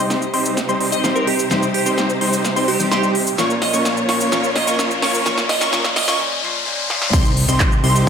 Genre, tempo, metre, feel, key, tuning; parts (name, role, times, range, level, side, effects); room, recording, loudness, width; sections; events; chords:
EDM, festival progressive house; 128 BPM; 4/4; straight; A4 = 440 Hz
glassy wavetable pluck; melody; 0.0-6.2 s; G4 to Eb5; -24 LUFS; right 4 dB; chorus, ping-pong delay
picked steel-string acoustic guitar; accompaniment; 0.0-7.1 s; Bb2 to G4; -26 LUFS; left 2 dB; sidechain pumping, ping-pong delay
dark symphonic string section; sustained chords; 0.0-8.1 s; Bb2 to Db5; -26 LUFS; equal; sidechain pumping
plucky unison lead; arpeggios; 0.0-8.1 s; C6 to Db6; -24 LUFS; left 1 dB; sidechain pumping, ping-pong delay
supersaw chords; riff; 0.0-8.1 s; G3 to Db5; -22 LUFS; equal; cassette tape, sidechain pumping, low-pass filter, ping-pong delay
riser and impact; sound effects; 2.4-8.1 s; -26 LUFS; left 2 dB
big-room dance drum kit; drums; 0.1-8.0 s; crash cymbal, handclaps, hi-hat, shaker, snare drum; -22 LUFS; equal; high-pass filter on snare, high-pass filter on perc, high-pass filter on hats, high-pass filter on cymbals, high-pass filter on room
fat analog bass; bass; 7.1-8.1 s; C2; -18 LUFS; equal; sidechain pumping
electronic kick drum; drums; 7.1-8.1 s; -16 LUFS; equal
moderate digital room reverb, RT60 1.2 s; high-pass filter, faint mains hum; -15 LUFS; side -7 dB against mid
0.0-7.1 A section
build-up 0.0-7.1; drum fill 0.0-6.2, 6.9; filter sweep on supersaw synth 0.0-7.1; filter sweep on digital synth lead 0.0-7.1; filter sweep 0.0-7.1; riser 2.4-7.1; break 6.2-7.1; impact 7.1-8.1
0.0 Cm; 3.4 Bbm; 7.1 Cm